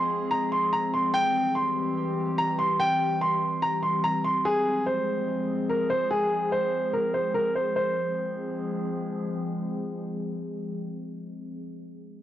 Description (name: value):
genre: hip hop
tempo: 145 BPM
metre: 4/4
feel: half-time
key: F harmonic minor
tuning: A4 = 438 Hz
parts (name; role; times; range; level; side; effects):
- dark baby grand piano; melody; 0.0-9.0 s; Ab4 to C6; -25 LUFS; right 1 dB; low-pass filter
- warbly tape-like pad; sustained chords; 0.0-11.5 s; E3 to Ab4; -30 LUFS; left 2 dB; chorus, built-in reverb, low-pass filter
room: light reverb, small room ambience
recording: dry, gritty hardware recording, transformer saturation, cassette tape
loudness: -24 LUFS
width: side -12 dB against mid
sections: 0.0-4.4 A section; 4.4-7.8 B section; 7.8-11.1 C section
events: none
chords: 0.0 Fm; 1.1 C; 4.4 Fm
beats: 0.31 0.72 | 1.14 1.55 1.97 2.38 | 2.79 3.21 3.62 4.04 | 4.45 4.86 5.28 5.69 | 6.10 6.52 6.93 7.35 | 7.76 8.17 8.59 9.00 | 9.41 9.83 10.24 10.66